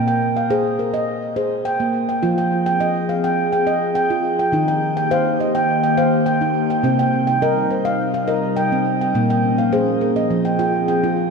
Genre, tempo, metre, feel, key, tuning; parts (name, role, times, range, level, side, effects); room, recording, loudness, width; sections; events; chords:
world meditative; 104 BPM; 4/4; straight; F minor; A4 = 439 Hz
handpan; arpeggios; 0.0-11.3 s; Bb2 to G5; -18 LUFS; right 2 dB; diffuse ambient delay, shimmer reverb
warbly tape-like pad; sustained chords; 2.2-11.3 s; C3 to Ab4; -21 LUFS; left 3 dB; chorus, built-in reverb, shimmer reverb
wet echo chamber reverb, RT60 1.8 s, studio reverb; -16 LUFS; side -4 dB against mid
0.0-11.3 A section
0.0 Bb5; 2.2 Fm; 4.5 Eb; 6.8 Cm; 9.1 Bbm; 10.3 Fm